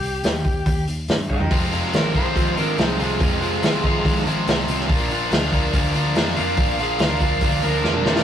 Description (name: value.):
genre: blues rock power trio and southern rock.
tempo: 142 BPM.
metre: 4/4.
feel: straight.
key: unclear.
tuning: A4 = 440 Hz.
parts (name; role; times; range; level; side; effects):
overdriven slide guitar; melody; 0.0-8.2 s; Eb4 to G5; -27 LUFS; right 1 dB; none.
vintage muted picked electric bass; bass; 0.0-8.2 s; F1 to G2; -26 LUFS; equal; none.
vintage drum kit; drums; 0.0-8.2 s; hi-hat, kick drum, snare drum, toms; -22 LUFS; equal; none.
smooth overdriven lead guitar; second line; 1.3-8.2 s; Ab3 to Bb4; -30 LUFS; right 3 dB; none.
cranked stack guitar; riff; 1.5-8.2 s; F2 to F4; -22 LUFS; left 1 dB; overdrive.
room: moderate studio reverb, RT60 0.6 s.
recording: rough rehearsal-room recording, tube saturation.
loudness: -18 LUFS.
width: side -9 dB against mid.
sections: 0.0-8.2 A section.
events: drum fill 1.3, 7.8-8.2.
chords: 0.0 Cm; 1.5 Fm; 4.9 Bb.